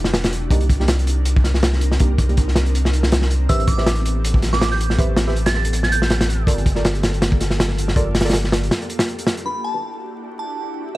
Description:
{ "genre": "drum and bass, jungle", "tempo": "161 BPM", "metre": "4/4", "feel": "swing 55% on 16ths", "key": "E phrygian", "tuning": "A4 = 440 Hz", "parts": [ { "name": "ethereal airy pad", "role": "sustained chords", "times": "0.0-11.0 s", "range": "Bb3 to Bb4", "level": "-30 LUFS", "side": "left 1 dB", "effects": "ensemble chorus, built-in reverb" }, { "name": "saturated sub bass", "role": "bass", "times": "0.0-8.7 s", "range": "E1 to C2", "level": "-19 LUFS", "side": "equal", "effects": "none" }, { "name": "crunchy breakbeat drum kit", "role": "drums", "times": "0.0-9.5 s", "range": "hi-hat, kick drum, snare drum", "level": "-19 LUFS", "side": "equal", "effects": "none" }, { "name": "deep mellow chord stab", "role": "stabs", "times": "0.5-11.0 s", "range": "Bb3 to E5", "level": "-29 LUFS", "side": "right 2 dB", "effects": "chorus, dub echo" }, { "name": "glassy synth bell", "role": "melody", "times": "3.5-6.4, 9.5-11.0 s", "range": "A5 to A6", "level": "-25 LUFS", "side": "right 3 dB", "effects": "chorus, phaser, vintage 12-bit sampler grit, dub echo" } ], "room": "small room reverb", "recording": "vinyl crackle", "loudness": "-16 LUFS", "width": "side -17 dB against mid", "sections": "0.0-9.5 A section; 9.5-11.0 B section", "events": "break 8.7-9.5", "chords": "0.0 Em9; 0.5 Cm9; 3.5 Am9; 6.5 Gm9; 9.5 Em9" }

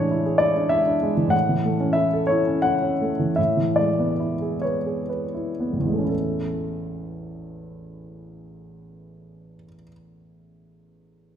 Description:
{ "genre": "classical, romantic character piece for solo piano", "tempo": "36-66 BPM (dotted quarters)", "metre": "6/8", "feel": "rubato", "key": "A major", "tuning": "A4 = 440 Hz", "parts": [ { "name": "warm grand piano", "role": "solo", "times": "0.0-11.4 s", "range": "A1 to F#5", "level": "-21 LUFS", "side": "equal", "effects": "none" } ], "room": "moderate concert hall reverb, RT60 2.1 s", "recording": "minimal, uncompressed stereo recording", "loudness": "-20 LUFS", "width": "side -9 dB against mid", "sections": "0.0-6.1 A section; 6.1-11.4 B section", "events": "slowing down 0.4-6.1", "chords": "0.0 E7/A; 1.3 A; 3.4 E7/A; 6.1 A" }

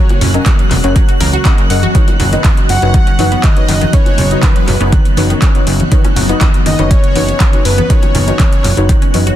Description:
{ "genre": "progressive house", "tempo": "121 BPM", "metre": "4/4", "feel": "straight", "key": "unclear", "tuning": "A4 = 440 Hz", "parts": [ { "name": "soft octave-layered synth lead", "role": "melody", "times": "0.0-9.4 s", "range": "B4 to F#5", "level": "-21 LUFS", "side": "left 1 dB", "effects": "chorus, tremolo, sidechain pumping, digital delay" }, { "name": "soft supersaw", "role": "second line", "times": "0.0-9.3 s", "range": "B4 to F#5", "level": "-26 LUFS", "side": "equal", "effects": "sidechain pumping, tape echo" }, { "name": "evolving wavetable pad", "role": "sustained chords", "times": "0.0-9.4 s", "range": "C#3 to G#4", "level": "-21 LUFS", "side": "equal", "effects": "ensemble chorus, built-in reverb, phaser, sidechain pumping" }, { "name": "wide unison pluck", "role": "arpeggios", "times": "0.0-9.3 s", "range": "D#3 to F#5", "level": "-21 LUFS", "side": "right 1 dB", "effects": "sidechain pumping, tape echo" }, { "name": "deep mellow chord stab", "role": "stabs", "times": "0.0-9.4 s", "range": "C#4 to D#5", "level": "-20 LUFS", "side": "left 2 dB", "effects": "chorus, phaser, vintage 12-bit sampler grit, sidechain pumping, tape echo" }, { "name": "twinkling granular texture", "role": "texture", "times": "0.0-9.4 s", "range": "F#6", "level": "-26 LUFS", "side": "right 1 dB", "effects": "built-in reverb, sidechain pumping" }, { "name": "deep house drum kit", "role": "drums", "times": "0.1-9.4 s", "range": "handclaps, hi-hat", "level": "-20 LUFS", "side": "equal", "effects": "overdrive, studio reverb" }, { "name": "bongos and congas", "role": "percussion", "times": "0.1-9.2 s", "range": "none", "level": "-21 LUFS", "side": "left 1 dB", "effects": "none" }, { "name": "plucky analog bass", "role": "bass", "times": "0.2-9.3 s", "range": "E1 to C#2", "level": "-14 LUFS", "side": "equal", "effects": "sidechain pumping" }, { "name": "electronic kick drum", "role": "drums", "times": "0.5-9.0 s", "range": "none", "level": "-11 LUFS", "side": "equal", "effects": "overdrive, studio reverb" } ], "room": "little or no reverb", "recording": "dense, heavily limited modern master", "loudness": "-8 LUFS", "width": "side -12 dB against mid", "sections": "0.0-9.4 A section", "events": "none", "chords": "0.0 F#; 1.9 Badd9/F#" }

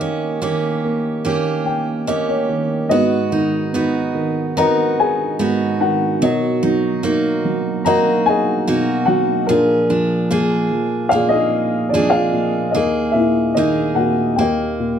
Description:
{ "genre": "folk", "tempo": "73 BPM", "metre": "4/4", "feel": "straight", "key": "G# minor", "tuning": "A4 = 441 Hz", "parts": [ { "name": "dark upright piano", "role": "melody", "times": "0.0-15.0 s", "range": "D#2 to A#5", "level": "-17 LUFS", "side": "equal", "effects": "none" }, { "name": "picked steel-string acoustic guitar", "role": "arpeggios", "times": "0.0-15.0 s", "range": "E#3 to G#4", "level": "-21 LUFS", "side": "right 2 dB", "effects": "none" } ], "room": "moderate large studio reverb, RT60 0.9 s", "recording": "dark, warm production", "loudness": "-15 LUFS", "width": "side -8 dB against mid", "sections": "0.0-15.0 A section", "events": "upright piano fill 1.3-2.9", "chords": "0.0 D#7; 2.9 G#m7; 6.2 Bmaj7; 9.5 A#7; 12.7 D#sus4; 14.4 D#" }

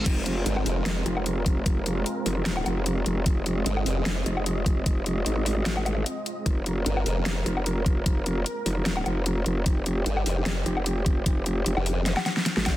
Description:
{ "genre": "heavy wobble dubstep", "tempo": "150 BPM", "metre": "4/4", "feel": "swing 54% on 16ths, half-time", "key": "F minor", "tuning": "A4 = 445 Hz", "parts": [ { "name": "supersaw chords", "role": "sustained chords", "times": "0.0-12.8 s", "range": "Ab3 to Eb5", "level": "-33 LUFS", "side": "right 1 dB", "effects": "sidechain pumping, low-pass filter" }, { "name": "growl bass", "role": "bass", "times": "0.0-12.8 s", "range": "F1 to Ab1", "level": "-26 LUFS", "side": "equal", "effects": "chorus, overdrive" }, { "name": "dubstep drum kit", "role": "drums", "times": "0.1-12.7 s", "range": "crash cymbal, hi-hat, snare drum, woodblock", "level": "-29 LUFS", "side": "left 2 dB", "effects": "overdrive, studio reverb" }, { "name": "electronic kick drum", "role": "drums", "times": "0.1-12.7 s", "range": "none", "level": "-24 LUFS", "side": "equal", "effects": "overdrive, studio reverb" }, { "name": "formant-sweep wobble bass", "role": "bass", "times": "0.5-1.0, 3.7-4.2, 6.9-7.4, 10.1-12.2 s", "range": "F1 to G1", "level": "-26 LUFS", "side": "equal", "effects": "chorus, overdrive" } ], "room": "digital ambience", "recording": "dense, heavily limited modern master", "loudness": "-23 LUFS", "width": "side -14 dB against mid", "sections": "0.0-12.8 A section", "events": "drum fill 12.1-12.8", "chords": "0.0 Fm" }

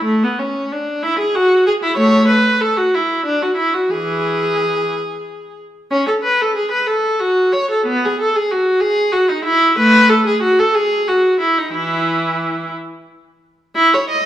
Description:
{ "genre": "classical, baroque-style suite movement for unaccompanied viola", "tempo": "58-64 BPM (dotted quarters)", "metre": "6/8", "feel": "rubato", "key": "E major from 5.9 s", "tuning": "A4 = 440 Hz", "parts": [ { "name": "rich viola", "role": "solo", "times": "0.0-14.2 s", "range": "E3 to D#5", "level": "-14 LUFS", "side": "equal", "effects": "none" } ], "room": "wet recital hall reverb, RT60 1.6 s", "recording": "none", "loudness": "-13 LUFS", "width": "side -12 dB against mid", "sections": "0.0-13.8 A section", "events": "none", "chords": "none" }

